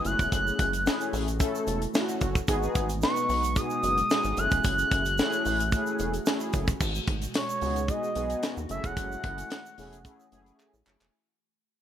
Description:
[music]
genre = early-eighties boogie funk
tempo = 111 BPM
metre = 4/4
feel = straight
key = F# dorian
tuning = A4 = 439 Hz
[part]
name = mellow synth brass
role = accompaniment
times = 0.0-11.1 s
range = A3 to B4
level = -32 LUFS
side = left 2 dB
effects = chorus
[part]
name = glassy FM pad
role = sustained chords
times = 0.0-11.1 s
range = B2 to F#4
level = -39 LUFS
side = right 2 dB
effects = ensemble chorus, built-in reverb
[part]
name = tight funk drum kit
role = drums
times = 0.0-11.1 s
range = crash cymbal, handclaps, hi-hat, kick drum, snare drum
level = -29 LUFS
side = equal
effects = none
[part]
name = expressive portamento lead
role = melody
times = 0.1-10.6 s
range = C#5 to F#6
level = -28 LUFS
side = equal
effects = chorus, slapback echo
[part]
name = rubbery square bass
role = bass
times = 0.1-11.1 s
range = E1 to D#2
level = -32 LUFS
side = equal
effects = none
[part]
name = tube shaker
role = percussion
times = 0.1-11.1 s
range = none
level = -44 LUFS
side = right 9 dB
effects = none
[sound]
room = little or no reverb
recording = none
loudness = -25 LUFS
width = side -10 dB against mid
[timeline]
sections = 0.0-6.8 A section; 6.8-11.1 B section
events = fade-out 6.8-11.1; drum fill 10.6-11.1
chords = 0.1 F#m7; 2.5 G#m7; 4.4 F#m7; 6.8 G#m7; 8.7 F#m7

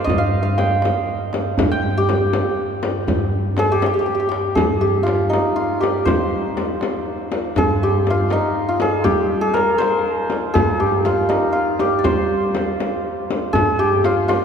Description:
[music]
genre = Persian modal ensemble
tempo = 80 BPM (dotted quarters)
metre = 6/8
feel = straight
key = G dastgah shur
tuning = A4 = 440 Hz
[part]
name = santur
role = melody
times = 0.0-14.4 s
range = Eb4 to G5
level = -19 LUFS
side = equal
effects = none
[part]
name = upright bass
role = bass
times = 0.1-14.3 s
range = G2 to G3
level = -24 LUFS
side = equal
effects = none
[part]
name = frame drum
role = percussion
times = 0.1-14.4 s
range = none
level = -24 LUFS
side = left 3 dB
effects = none
[part]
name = tombak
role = percussion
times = 0.1-14.4 s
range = none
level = -27 LUFS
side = right 2 dB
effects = none
[sound]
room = wet church reverb, RT60 3.5 s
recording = recorded in a church or concert hall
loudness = -16 LUFS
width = side -7 dB against mid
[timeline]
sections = 0.0-4.6 A section; 4.6-14.4 B section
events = none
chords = none

